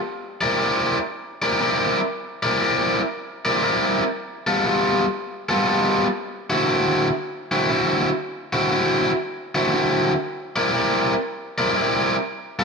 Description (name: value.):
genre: blues.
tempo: 118 BPM.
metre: 4/4.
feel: swing 64% on 8ths.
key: unclear.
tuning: A4 = 444 Hz.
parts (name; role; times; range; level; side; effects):
cranked stack guitar; solo; 0.4-12.6 s; D3 to D5; -19 LUFS; equal; overdrive, spring reverb.
room: light reverb.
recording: none.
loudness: -19 LUFS.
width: side -4 dB against mid.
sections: 0.0-12.6 A section.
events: none.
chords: 0.1 C9; 4.2 G9; 6.2 D9; 10.2 C9.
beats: | 0.09 0.59 1.10 1.61 | 2.12 2.63 3.13 3.64 | 4.15 4.66 5.17 5.67 | 6.18 6.69 7.20 7.71 | 8.21 8.72 9.23 9.74 | 10.24 10.75 11.26 11.77 | 12.28.